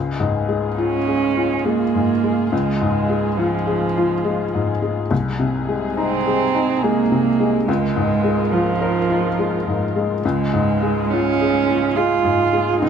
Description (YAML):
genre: neoclassical piano and strings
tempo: 70 BPM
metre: 3/4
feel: rubato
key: Db major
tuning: A4 = 439 Hz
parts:
  - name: felt-muted upright piano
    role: accompaniment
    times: 0.0-12.9 s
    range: C2 to Bb4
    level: -20 LUFS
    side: left 4 dB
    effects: none
  - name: muted studio string section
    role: sustained chords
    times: 0.0-12.9 s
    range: Ab3 to Bb4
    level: -28 LUFS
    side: equal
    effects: none
  - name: muted cello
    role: second line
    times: 0.8-12.9 s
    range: F3 to F4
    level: -20 LUFS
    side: right 8 dB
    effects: none
room: moderate large studio reverb, RT60 1.3 s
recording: none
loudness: -17 LUFS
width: side -7 dB against mid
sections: 0.0-12.9 A section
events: none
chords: 0.0 Db; 5.1 Ab/C; 7.7 Bbm7/Db; 10.2 Db